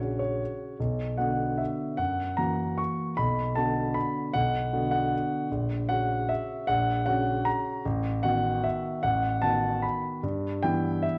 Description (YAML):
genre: classical, piano waltz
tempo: 152 BPM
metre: 3/4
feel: rubato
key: B minor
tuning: A4 = 440 Hz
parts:
  - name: warm concert grand piano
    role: solo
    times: 0.0-11.2 s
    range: A1 to C#6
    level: -28 LUFS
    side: equal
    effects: none
room: moderate scoring stage reverb, RT60 1.9 s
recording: worn, warbling old tape, cassette tape, warbly pitch drift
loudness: -28 LUFS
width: mono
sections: 0.0-11.2 A section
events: none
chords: 0.0 F#/A#; 0.8 Bm; 2.0 F#7; 3.2 Bm; 5.5 F#/A#; 7.9 B7/A; 10.2 Em/G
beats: 0.00 0.40 | 0.80 1.19 1.59 | 1.99 2.39 2.79 | 3.18 3.56 3.96 | 4.35 4.73 5.12 | 5.51 5.90 6.29 | 6.68 7.06 7.46 | 7.86 8.24 8.65 | 9.04 9.43 9.84 | 10.23 10.63 11.04